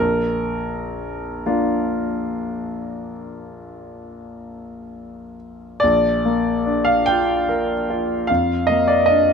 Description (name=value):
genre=classical, romantic nocturne for solo piano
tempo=38-51 BPM (dotted quarters)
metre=12/8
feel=rubato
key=Bb major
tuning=A4 = 440 Hz
part: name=warm grand piano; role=solo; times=0.0-9.3 s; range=Bb1 to G5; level=-19 LUFS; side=equal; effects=none
room=light reverb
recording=close, detailed microphones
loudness=-18 LUFS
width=side -6 dB against mid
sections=0.0-5.8 A section; 5.8-9.3 A section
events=none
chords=0.0 Bb